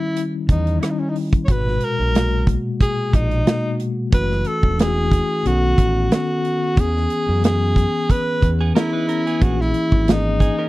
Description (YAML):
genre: lush 1970s-style soul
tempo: 91 BPM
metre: 4/4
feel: swing 54% on 16ths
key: G# minor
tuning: A4 = 436 Hz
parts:
  - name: breathy tenor saxophone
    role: melody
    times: 0.0-10.7 s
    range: C#4 to C#5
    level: -22 LUFS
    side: equal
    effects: slapback echo
  - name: mellow tine electric piano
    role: accompaniment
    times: 0.0-10.7 s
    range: A#2 to A4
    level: -23 LUFS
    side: left 2 dB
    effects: medium stereo tremolo
  - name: modern studio drum kit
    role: drums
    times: 0.2-10.6 s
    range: hi-hat, kick drum, rim click, snare drum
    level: -17 LUFS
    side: right 1 dB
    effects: none
  - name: overdriven fingered electric bass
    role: bass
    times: 0.5-10.5 s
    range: E1 to F#2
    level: -20 LUFS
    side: equal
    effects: none
  - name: clean electric guitar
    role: riff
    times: 8.6-10.7 s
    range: B3 to B4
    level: -28 LUFS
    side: right 5 dB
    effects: none
room: little or no reverb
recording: dry, close 1970s-style studio recording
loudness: -16 LUFS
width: side -18 dB against mid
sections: 0.0-10.7 A section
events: none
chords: 0.0 D#7b9; 1.5 G#m9; 4.1 F#m7; 5.4 B9; 6.8 E6; 9.4 A#m7b5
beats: 0.16 0.82 | 1.48 2.14 2.80 3.46 | 4.13 4.79 5.45 6.11 | 6.77 7.43 8.09 8.76 | 9.42 10.08